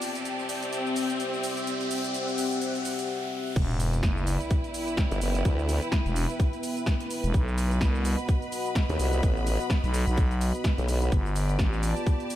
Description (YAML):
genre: bass house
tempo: 127 BPM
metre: 4/4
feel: swing 57% on 16ths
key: E minor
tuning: A4 = 440 Hz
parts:
  - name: dark analog pad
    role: sustained chords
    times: 0.0-12.4 s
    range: B3 to G5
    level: -32 LUFS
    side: left 1 dB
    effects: chorus, sidechain pumping
  - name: house drum kit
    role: drums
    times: 0.0-12.4 s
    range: cabasa, crash cymbal, hi-hat, snare drum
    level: -36 LUFS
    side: equal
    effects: small room ambience
  - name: riser and sub drop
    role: sound effects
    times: 0.0-5.5 s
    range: none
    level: -35 LUFS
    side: equal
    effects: none
  - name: clear symphonic string section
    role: texture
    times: 0.0-12.4 s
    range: C4 to B5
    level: -36 LUFS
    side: equal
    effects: sidechain pumping
  - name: growling FM bass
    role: bass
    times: 3.6-11.9 s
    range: E1 to C2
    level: -26 LUFS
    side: equal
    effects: tube saturation, sidechain pumping
  - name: electronic kick drum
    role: drums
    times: 3.6-12.2 s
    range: none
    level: -25 LUFS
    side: equal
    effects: small room ambience
  - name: formant-sweep wobble bass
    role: bass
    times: 5.1-5.8, 8.9-11.1 s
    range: F#1 to D#2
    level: -26 LUFS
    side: equal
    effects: chorus, tube saturation, sidechain pumping
room: light reverb, digital ambience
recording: none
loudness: -25 LUFS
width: side -13 dB against mid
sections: 0.0-3.6 A section; 3.6-12.4 B section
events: build-up 0.0-3.6; riser 0.0-3.6; break 3.1-3.6; drop 3.6-12.4; impact 3.6-5.5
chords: 0.0 C; 3.6 Em7; 7.3 B; 11.1 G7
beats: 0.26 0.73 1.20 | 1.67 2.15 2.62 3.09 | 3.56 4.03 4.51 4.98 | 5.45 5.92 6.40 6.87 | 7.34 7.81 8.29 8.76 | 9.23 9.70 10.18 10.65 | 11.12 11.59 12.07